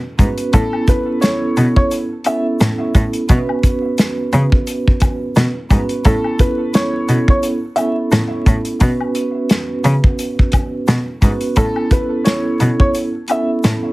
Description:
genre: hip hop, boom-bap hip-hop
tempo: 87 BPM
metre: 4/4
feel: swing 57% on 16ths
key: A major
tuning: A4 = 440 Hz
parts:
  - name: vibraphone with soft mallets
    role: accompaniment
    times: 0.2-13.9 s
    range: B3 to B4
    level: -20 LUFS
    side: right 2 dB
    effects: cassette tape
  - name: rich cello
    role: bass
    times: 0.2-13.7 s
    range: G#2 to C#3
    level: -16 LUFS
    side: equal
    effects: none
  - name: warm soul drum kit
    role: drums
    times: 0.2-13.8 s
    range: hi-hat, kick drum, snare drum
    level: -15 LUFS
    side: equal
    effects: none
  - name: tube shaker and woodblock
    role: percussion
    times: 0.2-13.8 s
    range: none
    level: -30 LUFS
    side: left 6 dB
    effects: none
  - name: dark upright piano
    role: melody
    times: 0.5-13.5 s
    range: A4 to E5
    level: -21 LUFS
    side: equal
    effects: tape echo
room: little or no reverb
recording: heavily compressed radio sound, multiband compression, vinyl crackle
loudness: -13 LUFS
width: side -20 dB against mid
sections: 0.0-13.9 A section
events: none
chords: 0.0 Bsus2; 0.5 Aadd9; 3.3 Bsus2; 6.1 Aadd9; 8.8 Bsus2; 11.6 Aadd9

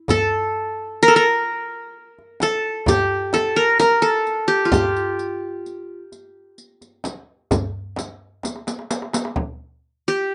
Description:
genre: Arabic maqam ensemble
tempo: 129 BPM (eighths)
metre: 10/8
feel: straight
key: G minor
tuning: A4 = 439 Hz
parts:
  - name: qanun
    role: melody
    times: 0.1-10.3 s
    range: F4 to Bb4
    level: -20 LUFS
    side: equal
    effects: plate reverb
  - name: darbuka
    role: percussion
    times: 0.1-9.4 s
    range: none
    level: -30 LUFS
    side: equal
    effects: none
  - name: frame drum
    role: percussion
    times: 0.1-9.6 s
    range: none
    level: -27 LUFS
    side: equal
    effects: none
  - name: riq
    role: percussion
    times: 0.1-9.4 s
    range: none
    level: -32 LUFS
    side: equal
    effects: none
room: moderate studio reverb, RT60 0.5 s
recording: rough home demo mix, nothing above 10.3 kHz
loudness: -20 LUFS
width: mono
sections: 0.0-9.4 A section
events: drum fill 8.4-9.4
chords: none

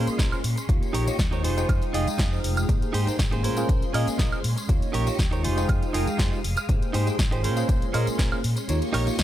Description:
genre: filtered disco house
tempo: 120 BPM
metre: 4/4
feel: straight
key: unclear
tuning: A4 = 437 Hz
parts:
  - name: bell-like tine electric piano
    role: accompaniment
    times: 0.0-9.2 s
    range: Ab3 to G5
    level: -30 LUFS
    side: equal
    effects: phaser, vintage 12-bit sampler grit, sidechain pumping
  - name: phased string machine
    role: sustained chords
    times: 0.0-9.2 s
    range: Ab3 to Eb6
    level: -36 LUFS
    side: equal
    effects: ensemble chorus, phaser, sidechain pumping
  - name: direct-recorded clean electric guitar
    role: riff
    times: 0.0-9.2 s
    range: Db4 to Eb5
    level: -32 LUFS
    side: right 4 dB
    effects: sidechain pumping
  - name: overdriven fingered electric bass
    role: bass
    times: 0.0-9.2 s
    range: F1 to Bb2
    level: -27 LUFS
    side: equal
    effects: sidechain pumping
  - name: punchy analog drum machine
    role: drums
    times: 0.1-9.2 s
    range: hi-hat, snare drum, woodblock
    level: -31 LUFS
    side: equal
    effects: none
  - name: tambourine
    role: percussion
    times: 0.1-9.2 s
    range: none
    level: -41 LUFS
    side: left 4 dB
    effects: sidechain pumping on perc
  - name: electronic kick drum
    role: drums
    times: 0.2-8.3 s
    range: none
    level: -24 LUFS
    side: equal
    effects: none
room: little or no reverb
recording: none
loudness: -22 LUFS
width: side -12 dB against mid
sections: 0.0-9.2 A section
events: kick drops out 8.7-9.2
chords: 0.0 Bbm9; 0.7 Eb7; 1.4 Fm7; 2.7 Abmaj7; 3.4 Bbm9; 4.7 Eb7; 5.4 Fm7; 6.7 Abmaj7; 7.4 Bbm9; 8.7 Eb7

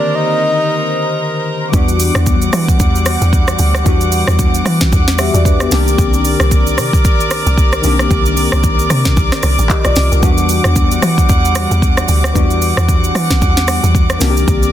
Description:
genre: amapiano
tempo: 113 BPM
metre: 4/4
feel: swing 58% on 16ths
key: E minor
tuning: A4 = 439 Hz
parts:
  - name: breathy flute-like synth lead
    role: melody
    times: 0.0-1.5 s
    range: D5 to Eb5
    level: -16 LUFS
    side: equal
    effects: chorus, digital delay
  - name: tine electric piano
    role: accompaniment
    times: 0.0-14.7 s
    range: D3 to E5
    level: -19 LUFS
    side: left 4 dB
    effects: phaser
  - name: rich chamber string section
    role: sustained chords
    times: 0.0-14.7 s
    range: G3 to D6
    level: -19 LUFS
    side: equal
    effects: none
  - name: deep log drum bass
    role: bass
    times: 1.7-14.7 s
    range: A1 to E3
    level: -15 LUFS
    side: equal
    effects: none
  - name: afro-pop drum kit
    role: drums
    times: 1.7-14.7 s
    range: handclaps, hi-hat, kick drum, rim click, shaker, snare drum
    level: -14 LUFS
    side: equal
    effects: soft clipping on snare
room: digital ambience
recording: dense, heavily limited modern master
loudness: -10 LUFS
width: side -12 dB against mid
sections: 0.0-1.7 A section; 1.7-14.7 B section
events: break 0.0-1.7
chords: 0.0 Cm9; 1.7 Em9; 5.7 Cm9; 10.2 Em9; 14.2 Cm9

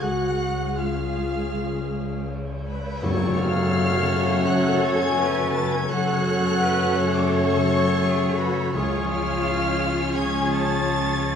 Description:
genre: cinematic, emotional film score for orchestra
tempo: 84 BPM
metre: 4/4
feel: rubato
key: F# harmonic minor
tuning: A4 = 437 Hz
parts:
  - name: warm studio violin section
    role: melody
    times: 0.0-11.4 s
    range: B5 to A6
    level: -32 LUFS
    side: equal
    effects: none
  - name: clear oboe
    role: second line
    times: 0.0-11.4 s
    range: C#5 to F#5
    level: -32 LUFS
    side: left 1 dB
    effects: none
  - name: flute section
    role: second line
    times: 0.0-11.3 s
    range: B4 to A5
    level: -30 LUFS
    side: left 1 dB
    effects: none
  - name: rich studio violin section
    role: second line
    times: 0.0-11.4 s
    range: G#4 to F#5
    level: -32 LUFS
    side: left 2 dB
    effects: none
  - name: warm clarinet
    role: second line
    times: 0.0-11.4 s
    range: E#4 to A4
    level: -32 LUFS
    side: equal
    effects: none
  - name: warm studio viola section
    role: accompaniment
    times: 0.0-11.4 s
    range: C#4 to G#4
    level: -30 LUFS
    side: right 1 dB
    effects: none
  - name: dark French horn section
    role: sustained chords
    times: 0.0-11.4 s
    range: G#3 to F#4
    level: -28 LUFS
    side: left 2 dB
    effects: none
  - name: concert harp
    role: arpeggios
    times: 0.0-11.4 s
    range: F#2 to C#5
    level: -30 LUFS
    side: left 7 dB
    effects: none
  - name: rich studio double bass section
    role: bass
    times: 0.0-11.4 s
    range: C#2 to F#2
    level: -28 LUFS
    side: right 1 dB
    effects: none
  - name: warm studio cello section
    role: bass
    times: 0.0-11.4 s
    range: C#2 to B4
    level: -32 LUFS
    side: right 3 dB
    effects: none
  - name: cymbal swell and tam-tam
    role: percussion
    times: 0.0-5.9 s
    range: none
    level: -36 LUFS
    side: equal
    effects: none
  - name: timpani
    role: percussion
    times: 3.0-4.1, 8.7-9.8 s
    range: F#2 to C#3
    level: -29 LUFS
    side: left 2 dB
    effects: none
room: wet scoring stage reverb, RT60 1.8 s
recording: studio reverb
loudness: -20 LUFS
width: side -7 dB against mid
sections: 0.0-3.0 A section; 3.0-11.4 B section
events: band accent 3.0-3.8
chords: 0.0 C#; 3.0 F#m; 8.7 C#

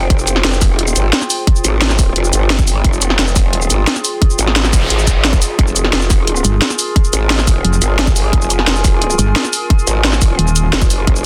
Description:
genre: dark technical drum and bass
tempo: 175 BPM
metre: 4/4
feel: straight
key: F minor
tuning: A4 = 444 Hz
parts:
  - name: growl bass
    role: bass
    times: 0.0-11.3 s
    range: F1 to Ab1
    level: -18 LUFS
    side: equal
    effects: chorus
  - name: warbly tape-like pad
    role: texture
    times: 0.0-11.3 s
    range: F4 to Ab5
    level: -25 LUFS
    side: equal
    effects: chorus, built-in reverb, sidechain pumping
  - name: drum and bass drum kit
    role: drums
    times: 0.1-11.2 s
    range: hi-hat, shaker, snare drum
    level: -18 LUFS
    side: equal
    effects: none
  - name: electronic kick drum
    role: drums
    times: 0.1-11.1 s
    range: none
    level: -15 LUFS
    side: equal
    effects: none
  - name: noise sweep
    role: sound effects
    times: 4.7-5.6 s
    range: none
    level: -26 LUFS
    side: equal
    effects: none
  - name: metallic wobble bass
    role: bass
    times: 6.4-10.7 s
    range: Eb1 to G1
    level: -15 LUFS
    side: equal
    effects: chorus
room: little or no reverb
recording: dense, heavily limited modern master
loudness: -14 LUFS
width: mono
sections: 0.0-11.3 A section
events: noise sweep 4.7-5.6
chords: 0.0 Fmadd9

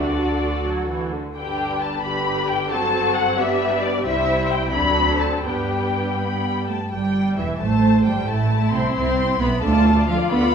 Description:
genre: quick classical-period movement for string orchestra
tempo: 81-91 BPM (dotted quarters)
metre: 6/8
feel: rubato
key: G major, C major from 6.9 s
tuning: A4 = 439 Hz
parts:
  - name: muted studio violin section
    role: melody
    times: 0.0-10.5 s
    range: E4 to B5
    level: -24 LUFS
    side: left 5 dB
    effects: none
  - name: muted studio violin section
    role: second line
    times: 0.0-10.5 s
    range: D4 to C6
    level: -27 LUFS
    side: left 3 dB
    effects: none
  - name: muted studio viola section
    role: accompaniment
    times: 0.0-10.5 s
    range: D3 to D5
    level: -25 LUFS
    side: right 2 dB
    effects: none
  - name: muted studio cello section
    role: bass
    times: 0.0-10.5 s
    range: E3 to B4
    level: -23 LUFS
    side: right 3 dB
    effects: none
  - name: muted studio double bass section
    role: bass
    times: 0.0-10.5 s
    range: E1 to G2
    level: -26 LUFS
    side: right 1 dB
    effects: none
room: wet recital hall reverb, RT60 1.4 s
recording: recorded in a church or concert hall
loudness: -18 LUFS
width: side -7 dB against mid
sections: 0.0-6.9 A section; 6.9-10.5 B section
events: none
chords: 0.0 D; 1.4 G; 2.7 F#dim/G; 3.4 G; 4.1 C; 4.7 D7; 5.5 G; 6.9 C; 8.3 Am; 8.9 Cmaj7; 9.6 Dm

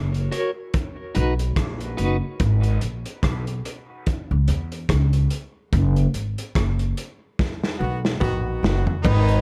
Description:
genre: dub reggae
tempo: 72 BPM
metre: 4/4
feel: swing 57% on 16ths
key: unclear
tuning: A4 = 440 Hz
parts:
  - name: upright bass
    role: bass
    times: 0.0-9.4 s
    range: F#1 to E2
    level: -24 LUFS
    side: equal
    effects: none
  - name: crunchy breakbeat drum kit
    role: drums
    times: 0.1-9.4 s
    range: crash cymbal, hi-hat, kick drum, rim click, snare drum, toms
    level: -27 LUFS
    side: equal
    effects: none
  - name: clean electric guitar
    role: accompaniment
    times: 0.3-2.2 s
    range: D#4 to C#5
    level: -32 LUFS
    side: equal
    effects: tremolo, dub echo
  - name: warm horn section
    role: second line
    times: 7.8-9.4 s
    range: D#3 to F#4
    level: -29 LUFS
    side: equal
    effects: dub echo
  - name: bright reedy silver concert flute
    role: melody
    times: 9.0-9.4 s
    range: B4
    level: -28 LUFS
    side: equal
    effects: none
room: small room ambience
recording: echo-heavy mix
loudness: -23 LUFS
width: mono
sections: 0.0-9.0 A section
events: band accent 5.7-9.0; drum fill 7.4-9.0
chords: 0.0 F#; 0.7 B; 2.4 G#m; 4.1 C#m; 5.7 F#sus2; 7.4 B

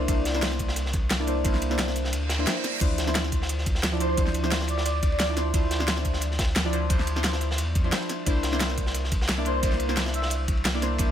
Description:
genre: liquid drum and bass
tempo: 176 BPM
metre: 4/4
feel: swing 54% on 16ths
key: D minor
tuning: A4 = 441 Hz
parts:
  - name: deep mellow chord stab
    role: accompaniment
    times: 0.0-11.1 s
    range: F3 to D5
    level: -29 LUFS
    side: equal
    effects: chorus, dub echo
  - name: warm sub bass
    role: bass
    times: 0.0-11.1 s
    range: C2 to E2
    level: -28 LUFS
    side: equal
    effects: none
  - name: crunchy breakbeat drum kit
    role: drums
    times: 0.1-11.1 s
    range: ride cymbal, snare drum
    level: -33 LUFS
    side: equal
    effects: high-pass filter on cymbals, high-pass filter on snare, high-pass filter on room
  - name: electronic kick drum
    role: drums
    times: 0.1-11.1 s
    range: none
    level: -26 LUFS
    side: equal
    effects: none
  - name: pop drum kit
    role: drums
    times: 0.1-11.1 s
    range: crash cymbal, hi-hat, snare drum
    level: -30 LUFS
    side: equal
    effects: none
  - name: reverse cymbal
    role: sound effects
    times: 2.2-2.8 s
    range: none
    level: -33 LUFS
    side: right 5 dB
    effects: none
  - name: breathy flute-like synth lead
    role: melody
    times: 4.0-5.4, 9.5-10.3 s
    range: C5 to E5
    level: -32 LUFS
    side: equal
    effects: ensemble chorus, tape echo
room: little or no reverb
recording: none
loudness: -23 LUFS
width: side -10 dB against mid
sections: 0.0-11.1 A section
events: kick drops out 2.1-2.8; reverse cymbal 2.2-2.8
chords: 0.0 C9; 2.8 Dm9; 8.3 C9

